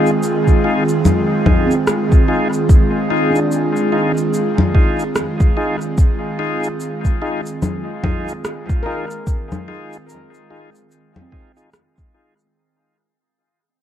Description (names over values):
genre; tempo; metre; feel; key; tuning
ambient dub; 73 BPM; 4/4; swing 60% on 16ths; F dorian; A4 = 440 Hz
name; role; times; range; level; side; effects
airy breathy pad; sustained chords; 0.0-12.6 s; Eb3 to Ab4; -20 LUFS; right 2 dB; chorus
bright tonewheel organ; stabs; 0.0-12.3 s; Eb4 to Ab4; -22 LUFS; left 2 dB; overdrive, slow rotary speaker, dub echo
electronic cabasa, congas and rim click; drums; 0.1-12.5 s; none; -20 LUFS; left 1 dB; dub echo
electronic kick drum; drums; 0.5-12.1 s; none; -13 LUFS; equal; none
handpan; arpeggios; 1.7-13.0 s; C4 to Bb4; -25 LUFS; right 1 dB; vintage 12-bit sampler grit, dub echo
room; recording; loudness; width
light reverb; dark, warm production; -14 LUFS; side -10 dB against mid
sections
0.0-12.6 A section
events
fade-out 3.8-12.6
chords
0.0 Fm7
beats
0.23 1.05 1.87 | 2.69 3.51 4.34 5.16 | 5.98 6.80 7.62 8.45 | 9.27 10.09 10.91 11.73